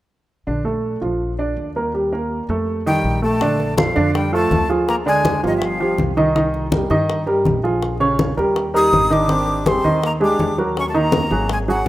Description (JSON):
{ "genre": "Afro-Cuban jazz", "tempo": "163 BPM", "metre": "4/4", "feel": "straight", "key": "Bb major", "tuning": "A4 = 441 Hz", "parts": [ { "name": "warm baby grand piano", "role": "accompaniment", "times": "0.5-11.9 s", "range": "Db3 to Eb5", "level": "-18 LUFS", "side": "right 1 dB", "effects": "none" }, { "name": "upright bass", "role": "bass", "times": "0.5-11.9 s", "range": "G1 to G2", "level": "-26 LUFS", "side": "equal", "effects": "none" }, { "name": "breathy bright jazz flute", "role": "melody", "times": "2.9-6.0, 8.8-11.9 s", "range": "Eb5 to Eb6", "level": "-22 LUFS", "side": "equal", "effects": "none" }, { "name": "trombone with metal mute", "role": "second line", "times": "2.9-6.0, 8.7-11.9 s", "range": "Eb3 to Eb4", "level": "-25 LUFS", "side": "left 3 dB", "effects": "none" }, { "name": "bongos", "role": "percussion", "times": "3.4-11.9 s", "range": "none", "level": "-28 LUFS", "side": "left 6 dB", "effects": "none" }, { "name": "congas", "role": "percussion", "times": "3.4-11.9 s", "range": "none", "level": "-23 LUFS", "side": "left 1 dB", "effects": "none" } ], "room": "moderate plate reverb, RT60 3.4 s", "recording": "rough home demo mix", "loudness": "-16 LUFS", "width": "side -15 dB against mid", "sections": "0.5-3.4 A section; 3.4-11.9 B section", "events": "none", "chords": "0.5 Bbmaj7; 1.2 Bb; 1.9 Ebadd9; 2.7 F9; 3.4 Bbmaj7; 4.9 Ddim; 5.6 Cmadd11/G; 6.3 Cm7; 7.8 Bbm7; 8.6 Eb; 9.3 Abmaj7; 10.8 Ebm" }